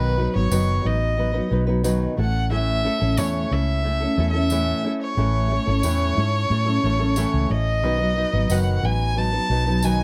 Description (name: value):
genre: acoustic pop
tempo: 90 BPM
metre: 4/4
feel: straight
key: unclear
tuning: A4 = 440 Hz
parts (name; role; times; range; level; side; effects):
- rich violin; melody; 0.0-10.0 s; B4 to A5; -28 LUFS; equal; none
- nylon-string guitar; accompaniment; 0.0-10.0 s; A2 to B4; -26 LUFS; equal; none
- vintage muted fingered electric bass; bass; 0.0-10.0 s; F#1 to A2; -24 LUFS; equal; none
- tambourine; percussion; 0.5-10.0 s; none; -36 LUFS; equal; none
room: little or no reverb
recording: close, detailed microphones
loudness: -22 LUFS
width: mono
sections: 0.0-10.0 A section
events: none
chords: 0.0 B; 2.2 A; 7.8 B